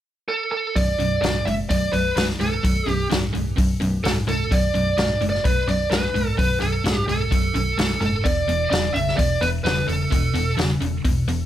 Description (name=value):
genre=blues rock power trio and southern rock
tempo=128 BPM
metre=4/4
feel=straight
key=B minor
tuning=A4 = 445 Hz
part: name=smooth overdriven lead guitar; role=melody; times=0.3-10.5 s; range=A4 to E5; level=-24 LUFS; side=right 1 dB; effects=none
part: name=distorted electric guitar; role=riff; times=0.8-11.5 s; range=B1 to C#3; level=-24 LUFS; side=equal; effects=distortion
part: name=vintage muted picked electric bass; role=bass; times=0.8-11.5 s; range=B0 to F#1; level=-26 LUFS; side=equal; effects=none
part: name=vintage drum kit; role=drums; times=0.8-11.4 s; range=hi-hat, kick drum, snare drum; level=-24 LUFS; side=equal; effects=none
room=moderate studio ambience, RT60 0.4 s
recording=none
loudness=-19 LUFS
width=side -12 dB against mid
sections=0.8-11.5 A section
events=none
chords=0.0 N.C.; 0.8 Bm7; 8.2 E5